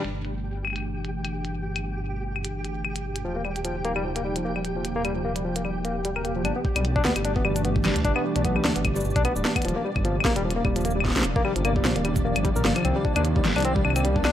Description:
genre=IDM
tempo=150 BPM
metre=4/4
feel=swing 56% on 16ths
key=unclear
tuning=A4 = 441 Hz
part: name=hollow soft pad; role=sustained chords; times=0.0-14.3 s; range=B2 to G4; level=-30 LUFS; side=right 2 dB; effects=chorus
part: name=dark detuned saw bass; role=bass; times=0.0-14.3 s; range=D1 to Eb2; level=-28 LUFS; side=equal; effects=none
part: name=glitchy drum kit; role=drums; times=0.0-14.3 s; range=cabasa, claves, hi-hat, snare drum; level=-28 LUFS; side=left 1 dB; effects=low-pass filter on perc, low-pass filter on snare, low-pass filter on hats, low-pass filter on room, tape echo
part: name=flickering grainy texture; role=texture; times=0.4-14.3 s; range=D4 to G5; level=-36 LUFS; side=right 1 dB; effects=built-in reverb
part: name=barky tine electric piano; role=arpeggios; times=3.2-14.3 s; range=F3 to Bb4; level=-28 LUFS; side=left 3 dB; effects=tape echo
part: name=electronic kick drum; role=drums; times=6.6-14.2 s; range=none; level=-26 LUFS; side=equal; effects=none
room=light reverb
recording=none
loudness=-23 LUFS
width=side -11 dB against mid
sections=0.0-6.4 A section; 6.4-14.3 B section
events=filter sweep on analog synth pad 0.0-6.4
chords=0.0 G; 3.2 Ebadd9; 6.4 G; 9.6 Ebadd9; 12.8 Cmadd9

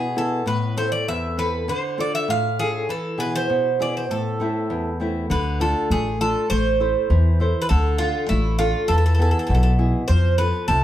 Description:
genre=greek folk, Greek bouzouki band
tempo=100 BPM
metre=2/4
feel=straight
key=A harmonic minor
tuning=A4 = 441 Hz
part: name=Greek bouzouki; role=melody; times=0.0-10.8 s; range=E4 to F5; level=-23 LUFS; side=right 2 dB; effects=plate reverb
part: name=nylon-string guitar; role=accompaniment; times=0.0-10.8 s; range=E2 to C5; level=-24 LUFS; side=left 1 dB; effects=none
part: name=upright bass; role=bass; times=5.3-10.8 s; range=A1 to F2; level=-19 LUFS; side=equal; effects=none
room=wet studio reverb, RT60 0.6 s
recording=heard from further back in the room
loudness=-19 LUFS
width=side -12 dB against mid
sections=0.0-5.3 A section; 5.3-10.8 B section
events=none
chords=0.5 Am; 1.7 Dm; 2.9 E; 4.1 Am; 5.3 Dm; 6.5 Am; 7.7 Dm; 8.9 E; 10.1 F

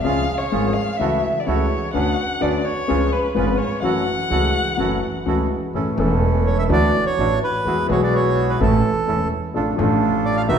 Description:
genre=tango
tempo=126 BPM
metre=4/4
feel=rubato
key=F# minor, A major from 5.7 s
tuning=A4 = 440 Hz
part: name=warm violin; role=second line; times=0.0-5.2 s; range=B4 to F#5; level=-24 LUFS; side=left 2 dB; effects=none
part: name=warm concert grand piano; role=accompaniment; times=0.0-10.6 s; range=E1 to A4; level=-20 LUFS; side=left 3 dB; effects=none
part: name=bandoneon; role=stabs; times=0.0-10.6 s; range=C#4 to B4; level=-26 LUFS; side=right 6 dB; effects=none
part: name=upright bass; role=bass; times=0.0-10.6 s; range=E1 to E2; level=-25 LUFS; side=right 2 dB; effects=none
part: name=bandoneon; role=melody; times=6.5-10.6 s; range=A4 to F5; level=-22 LUFS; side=right 3 dB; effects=none
room=wet recital hall reverb, RT60 1.5 s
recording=recorded in a church or concert hall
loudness=-17 LUFS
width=side -7 dB against mid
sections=0.0-5.7 A section; 5.7-10.6 B section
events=violin solo 0.0-5.7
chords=0.0 C#; 1.0 F#m7/C#; 1.9 Bmadd9/D; 2.9 C#7; 3.8 F#m7; 5.7 A; 6.7 Dadd9; 7.7 Eadd9; 8.6 A; 9.5 Dm/A

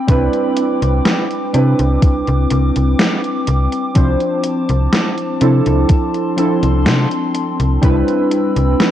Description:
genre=vaporwave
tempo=62 BPM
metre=4/4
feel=straight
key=C major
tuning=A4 = 443 Hz
part: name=warbly tape-like pad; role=sustained chords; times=0.0-8.9 s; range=C4 to E6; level=-23 LUFS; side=left 2 dB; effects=chorus, built-in reverb
part: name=warbly lo-fi synth keys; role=accompaniment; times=0.1-8.9 s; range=F3 to C5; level=-17 LUFS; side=right 1 dB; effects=lush chorus, analog delay
part: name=slap-like FM bass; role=bass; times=0.1-8.8 s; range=C2 to C3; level=-15 LUFS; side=equal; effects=none
part: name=electronic kick drum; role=drums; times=0.1-8.0 s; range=none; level=-13 LUFS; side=equal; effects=overdrive
part: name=gated 80s digital drum machine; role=drums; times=0.1-8.9 s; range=hi-hat, snare drum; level=-18 LUFS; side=equal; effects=gated reverb, gated reverb snare, overdrive
room=little or no reverb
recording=dry, gritty hardware recording, cassette tape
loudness=-13 LUFS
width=side -11 dB against mid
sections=0.0-8.9 A section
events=none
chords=0.0 Cmaj9; 4.0 Dm7/C; 7.8 Cmaj7

